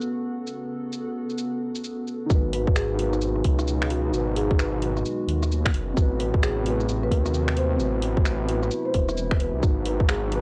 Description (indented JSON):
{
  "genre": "future garage",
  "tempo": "131 BPM",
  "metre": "4/4",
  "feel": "swing 62% on 16ths",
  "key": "G# phrygian",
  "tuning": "A4 = 436 Hz",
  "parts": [
    { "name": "muted felt-like synth keys", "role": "accompaniment", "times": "0.0-10.4 s", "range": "C4 to B4", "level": "-32 LUFS", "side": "equal", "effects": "chorus, vintage 12-bit sampler grit, sidechain pumping, tape echo" },
    { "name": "warbly tape-like pad", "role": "sustained chords", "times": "0.0-10.4 s", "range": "B2 to A4", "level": "-35 LUFS", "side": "equal", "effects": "chorus, built-in reverb, phaser, sidechain pumping" },
    { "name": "garage drum kit", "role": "drums", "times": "0.0-10.4 s", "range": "finger snaps, hi-hat, rim click, shaker", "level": "-34 LUFS", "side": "equal", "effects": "none" },
    { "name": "backwards swelling texture", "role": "texture", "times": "0.0-2.3 s", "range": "F#4", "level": "-48 LUFS", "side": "equal", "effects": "built-in reverb" },
    { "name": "swelling detuned saw bass", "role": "bass", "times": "2.3-10.4 s", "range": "E1 to D#2", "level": "-29 LUFS", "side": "equal", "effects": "sidechain pumping" },
    { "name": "electronic kick drum", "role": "drums", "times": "2.3-10.1 s", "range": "none", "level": "-24 LUFS", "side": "equal", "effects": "none" },
    { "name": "marimba with soft mallets", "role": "melody", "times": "2.5-10.3 s", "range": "F#4 to C5", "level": "-33 LUFS", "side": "equal", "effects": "tape echo" }
  ],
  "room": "digital ambience",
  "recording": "dry, gritty hardware recording, cassette tape, low-pass filter",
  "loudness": "-25 LUFS",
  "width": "mono",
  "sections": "0.0-2.3 A section; 2.3-10.4 B section",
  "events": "filter sweep 0.0-2.3",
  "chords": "0.0 Aadd9; 2.3 G#m7; 6.0 Am6; 9.6 G#m7",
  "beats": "0.01 | 0.47 0.93 1.39 1.84 | 2.30 2.76 3.22 3.67 | 4.13 4.59 5.05 5.51 | 5.96 6.42 6.88 7.34 | 7.80 8.26 8.71 9.17 | 9.63 10.09"
}